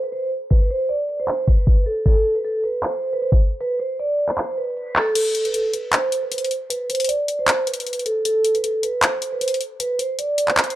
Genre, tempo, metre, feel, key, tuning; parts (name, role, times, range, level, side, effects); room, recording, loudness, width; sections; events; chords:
hip hop, trap; 155 BPM; 4/4; half-time; A4 = 439 Hz
vibraphone with hard mallets; melody; 0.0-10.7 s; A4 to D5; -21 LUFS; right 1 dB; low-pass filter
trap drum kit; drums; 0.1-10.8 s; crash cymbal, handclaps, hi-hat, kick drum; -19 LUFS; equal
little or no reverb; dry, gritty hardware recording, transformer saturation, low-pass filter; -18 LUFS; side -14 dB against mid
0.0-5.2 A section; 5.2-10.8 B section
filter sweep 0.0-5.2; break 3.6-5.2; kick muted 5.2-10.8; filter sweep on vibraphone 5.2-10.8